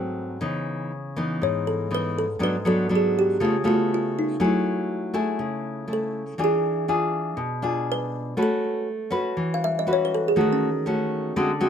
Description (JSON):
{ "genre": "bossa nova", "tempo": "121 BPM", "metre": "4/4", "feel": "straight", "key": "C# minor", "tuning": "A4 = 440 Hz", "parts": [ { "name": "kalimba", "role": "melody", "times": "0.0-10.6 s", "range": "C#4 to E#5", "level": "-26 LUFS", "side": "right 1 dB", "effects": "none" }, { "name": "nylon-string guitar", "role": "accompaniment", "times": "0.0-11.7 s", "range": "G#2 to B4", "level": "-24 LUFS", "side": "left 1 dB", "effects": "none" } ], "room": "little or no reverb", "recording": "close, detailed microphones", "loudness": "-22 LUFS", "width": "side -8 dB against mid", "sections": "0.4-11.7 A section", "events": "kalimba solo 0.4-11.7", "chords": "0.4 C#m9; 2.4 G#m7b5; 3.4 C#7b13; 4.4 F#m9; 6.4 E7b9; 8.4 A69; 10.4 D#m7b5", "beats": "| 0.42 0.92 1.42 1.91 | 2.41 2.91 3.41 3.90 | 4.40 4.90 5.40 5.89 | 6.39 6.89 7.38 7.88 | 8.38 8.87 9.37 9.87 | 10.36 10.86 11.35" }